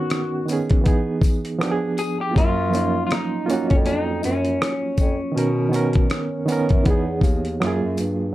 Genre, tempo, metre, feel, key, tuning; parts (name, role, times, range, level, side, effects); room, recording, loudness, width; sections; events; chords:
lo-fi hip hop; 80 BPM; 4/4; swing 57% on 16ths; F# major; A4 = 440 Hz
electric guitar through a small old amp; melody; 0.0-7.6 s; C#4 to Ab4; -26 LUFS; left 2 dB; plate reverb
barky reed electric piano; accompaniment; 0.0-8.3 s; D#3 to A#4; -23 LUFS; right 3 dB; overdrive, fast tremolo, cassette tape
dusty soul sampler-style drum kit; drums; 0.1-8.2 s; hi-hat, kick drum, rim click; -20 LUFS; left 1 dB
tambourine; percussion; 0.5-8.2 s; -42 LUFS; left 8 dB
mellow bass clarinet; bass; 2.4-8.3 s; D#2 to B2; -25 LUFS; equal
light reverb; dark, warm production; -18 LUFS; side -15 dB against mid
0.0-8.3 A section
break 0.0-2.4
0.0 Bmaj9; 0.9 Emaj7; 1.6 Fdim7; 2.4 F#maj7; 5.4 Bmaj9; 6.9 Emaj7; 7.6 F#maj9